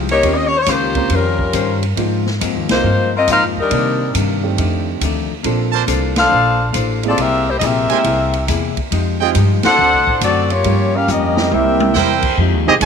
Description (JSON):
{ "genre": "jazz, big band swing", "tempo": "138 BPM", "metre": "4/4", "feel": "swing 66% on 8ths", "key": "unclear", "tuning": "A4 = 440 Hz", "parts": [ { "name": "archtop guitar, miked and amplified", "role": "accompaniment", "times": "0.0-12.9 s", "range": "F2 to C5", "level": "-22 LUFS", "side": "left 12 dB", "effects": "none" }, { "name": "upright bass", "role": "bass", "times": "0.0-12.9 s", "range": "A1 to C3", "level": "-19 LUFS", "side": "equal", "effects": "none" }, { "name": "warm saxophone section", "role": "melody", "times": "0.1-12.2 s", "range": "G3 to Gb5", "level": "-16 LUFS", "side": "left 2 dB", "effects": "none" }, { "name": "swinging big-band drum kit", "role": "drums", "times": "0.1-12.9 s", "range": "crash cymbal, hi-hat, kick drum, ride cymbal, snare drum, toms", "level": "-24 LUFS", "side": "right 1 dB", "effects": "none" }, { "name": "warm concert grand piano", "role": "accompaniment", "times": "0.2-11.9 s", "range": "Eb3 to D5", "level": "-24 LUFS", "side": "right 13 dB", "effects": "none" }, { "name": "brilliant trumpet section", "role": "stabs", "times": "5.7-12.4 s", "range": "D4 to A5", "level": "-21 LUFS", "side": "right 12 dB", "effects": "none" }, { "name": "muted trombone section", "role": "second line", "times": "11.5-12.9 s", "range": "C3 to E4", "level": "-20 LUFS", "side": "right 13 dB", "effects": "tape echo" }, { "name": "clear trombone section", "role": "sustained chords", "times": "12.4-12.9 s", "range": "Eb3 to F4", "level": "-29 LUFS", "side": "right 13 dB", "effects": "none" }, { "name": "clear trumpet section", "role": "melody", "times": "12.7-12.9 s", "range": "C4 to Ab5", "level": "-11 LUFS", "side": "right 2 dB", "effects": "none" } ], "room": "light reverb, small room ambience", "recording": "1960s-style stereo with parts hard left and right", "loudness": "-13 LUFS", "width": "side -6 dB against mid", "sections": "0.0-12.4 A section", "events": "band accent 2.6, 6.1, 9.6; drum fill 11.1-12.0", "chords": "0.2 Eb13; 2.0 Ab69; 3.7 Cm9; 4.6 F13; 5.5 Bbmaj9; 7.2 C7b13; 8.9 Fm9; 9.8 D7; 10.7 Gm7b5; 11.5 C7", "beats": "| 0.24 0.67 1.11 1.54 | 1.98 2.41 2.85 3.28 | 3.71 4.15 4.58 5.02 | 5.45 5.89 6.32 6.75 | 7.19 7.62 8.05 8.49 | 8.92 9.36 9.79 10.22 | 10.65 11.09 11.52 11.95 | 12.39 12.82" }